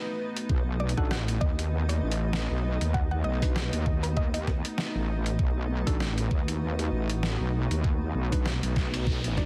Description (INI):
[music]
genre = glitch hop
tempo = 98 BPM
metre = 4/4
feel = swing 56% on 16ths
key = unclear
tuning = A4 = 441 Hz
[part]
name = dark analog pad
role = sustained chords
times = 0.0-9.5 s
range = A3 to D#5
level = -40 LUFS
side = equal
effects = chorus, sidechain pumping
[part]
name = granular cloud pad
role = texture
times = 0.0-9.5 s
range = B3 to B4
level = -41 LUFS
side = equal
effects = built-in reverb, sidechain pumping
[part]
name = boom bap sampler-style drum kit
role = drums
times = 0.4-9.5 s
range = hi-hat, snare drum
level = -37 LUFS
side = equal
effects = none
[part]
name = wobble bass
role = bass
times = 0.5-9.5 s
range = A1 to D#2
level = -31 LUFS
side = equal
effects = chorus, tube saturation
[part]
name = electronic kick drum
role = drums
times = 0.5-9.5 s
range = none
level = -30 LUFS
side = equal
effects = none
[part]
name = woody wave-folded pluck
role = melody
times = 0.8-4.4 s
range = B4 to F#5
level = -40 LUFS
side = equal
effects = chorus, dub echo
[part]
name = mellow tine electric piano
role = stabs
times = 1.0-9.5 s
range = D4 to D5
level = -41 LUFS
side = equal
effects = sidechain pumping, dub echo
[part]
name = noise sweep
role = sound effects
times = 8.6-9.5 s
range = none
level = -42 LUFS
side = equal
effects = none
[sound]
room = light reverb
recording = dense, heavily limited modern master, vinyl crackle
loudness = -28 LUFS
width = mono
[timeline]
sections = 0.0-9.5 A section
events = noise sweep 8.6-9.5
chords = 0.0 B7